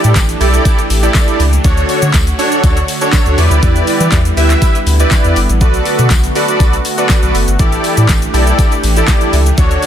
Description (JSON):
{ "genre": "dance-pop", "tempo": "121 BPM", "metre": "4/4", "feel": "straight", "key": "unclear", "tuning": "A4 = 440 Hz", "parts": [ { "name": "big bright polysynth", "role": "accompaniment", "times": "0.0-9.9 s", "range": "D4 to E5", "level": "-15 LUFS", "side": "right 1 dB", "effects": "wide subtle chorus, sidechain pumping" }, { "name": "soft supersaw", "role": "sustained chords", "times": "0.0-9.9 s", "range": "D3 to C#5", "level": "-20 LUFS", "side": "equal", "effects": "sidechain pumping" }, { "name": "round analog bass", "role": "bass", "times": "0.0-9.8 s", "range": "F#1 to E3", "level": "-12 LUFS", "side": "equal", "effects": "sidechain pumping" }, { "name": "pop drum kit", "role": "drums", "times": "0.0-9.9 s", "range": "handclaps, hi-hat, kick drum, shaker, snare drum", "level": "-14 LUFS", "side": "equal", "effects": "overdrive" }, { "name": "tambourine", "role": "percussion", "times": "0.2-9.9 s", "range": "none", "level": "-29 LUFS", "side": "left 8 dB", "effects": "none" } ], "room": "light reverb", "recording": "dense, heavily limited modern master", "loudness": "-9 LUFS", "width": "side -10 dB against mid", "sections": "0.0-9.9 A section", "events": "none", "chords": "0.0 A7sus4; 1.6 Dmaj7; 3.4 Em7; 5.6 Bm7; 7.6 A7sus4", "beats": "0.16 0.65 1.15 | 1.64 2.14 2.64 3.13 | 3.63 4.12 4.62 5.12 | 5.61 6.11 6.60 7.10 | 7.59 8.09 8.59 9.08 | 9.58" }